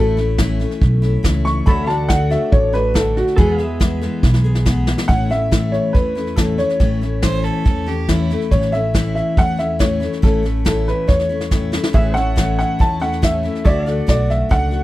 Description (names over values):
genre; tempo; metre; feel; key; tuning
honky-tonk and classic country; 140 BPM; 4/4; straight; A major; A4 = 440 Hz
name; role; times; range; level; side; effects
clear upright piano; melody; 0.0-14.8 s; F#4 to C#6; -20 LUFS; equal; none
picked steel-string acoustic guitar; accompaniment; 0.0-14.8 s; E2 to G#4; -21 LUFS; left 4 dB; none
pedal steel guitar; sustained chords; 0.0-5.1, 11.9-14.8 s; G#4 to F#5; -30 LUFS; right 2 dB; lush chorus
upright bass; bass; 0.0-14.8 s; A1 to E2; -20 LUFS; equal; none
soft brush drum kit; drums; 0.2-14.8 s; hi-hat, kick drum, snare drum; -17 LUFS; equal; none
clear fiddle; second line; 7.2-8.4 s; E4 to C5; -26 LUFS; right 6 dB; none
room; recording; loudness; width
studio reverb; dry, close 1970s-style studio recording; -14 LUFS; side -16 dB against mid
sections
0.0-5.1 A section; 5.1-14.8 B section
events
upright piano solo 0.0-5.1; drum fill 4.2-5.1, 11.1-11.9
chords
0.0 A; 1.7 D; 3.4 E; 5.1 A; 13.7 D